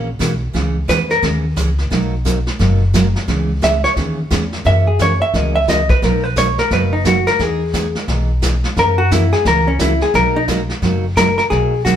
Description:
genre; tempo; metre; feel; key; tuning
country, western swing; 175 BPM; 4/4; swing 63% on 8ths; B major; A4 = 440 Hz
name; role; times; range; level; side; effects
picked steel-string acoustic guitar; accompaniment; 0.0-12.0 s; B2 to G#4; -21 LUFS; right 2 dB; none
upright bass; bass; 0.0-12.0 s; F#1 to F#2; -18 LUFS; equal; none
vintage brush drum kit; drums; 0.2-12.0 s; brushed snare drum, hi-hat, kick drum, snare drum; -21 LUFS; equal; none
vintage hollow-body jazz guitar; melody; 0.9-1.2, 3.6-12.0 s; C#4 to E5; -16 LUFS; equal; none
room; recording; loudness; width
moderate stone room reverb, RT60 1.0 s; band playing live in one room; -13 LUFS; side -10 dB against mid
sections
0.0-11.5 A section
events
hollow-body jazz guitar solo 0.0-11.5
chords
0.0 F#7; 0.5 C#m7; 1.9 Bmaj7; 3.3 C#m7; 4.7 F#7; 6.0 Bmaj7; 7.4 Emaj7; 8.8 F#7; 10.1 Bmaj7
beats
0.20 | 0.54 0.88 1.23 1.57 | 1.91 2.25 2.60 2.94 | 3.28 3.62 3.97 4.31 | 4.65 4.99 5.34 5.68 | 6.02 6.36 6.71 7.05 | 7.39 7.74 8.08 8.42 | 8.76 9.11 9.45 9.79 | 10.14 10.48 10.82 11.17 | 11.51 11.85

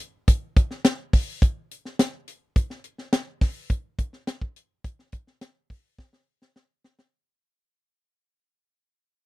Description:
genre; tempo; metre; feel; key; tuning
pop; 105 BPM; 4/4; straight; none; none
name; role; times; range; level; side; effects
tight funk drum kit; drums; 0.3-7.1 s; hi-hat, kick drum, snare drum; -20 LUFS; equal; none
room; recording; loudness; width
little or no reverb; dry, close 1970s-style studio recording; -23 LUFS; side -20 dB against mid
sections
0.0-7.1 A section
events
fade-out 0.0-7.1; drum fill 6.0-7.1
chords
none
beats
| 0.28 0.85 1.42 1.99 | 2.56 3.13 3.70 4.28 | 4.85 5.42 5.99 6.56

